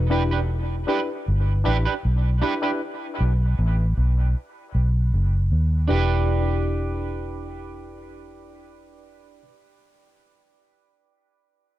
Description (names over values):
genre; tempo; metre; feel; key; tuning
reggae; 78 BPM; 4/4; straight; E minor; A4 = 440 Hz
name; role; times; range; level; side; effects
vintage muted fingered electric bass; bass; 0.0-9.4 s; E1 to D#2; -20 LUFS; equal; none
electric guitar at the edge of break-up; accompaniment; 0.1-9.5 s; D4 to B4; -29 LUFS; right 8 dB; harmonic tremolo, dub echo
barky reed electric piano; stabs; 0.1-9.4 s; D4 to B4; -30 LUFS; left 5 dB; overdrive, phaser, dub echo
room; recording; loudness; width
digital ambience; none; -20 LUFS; side -15 dB against mid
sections
0.0-5.9 A section; 5.9-9.0 B section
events
none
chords
0.0 Em7; 2.8 B7; 5.9 Em7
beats
0.49 1.26 2.03 | 2.81 3.58 4.35 5.12 | 5.89 6.66 7.43 8.21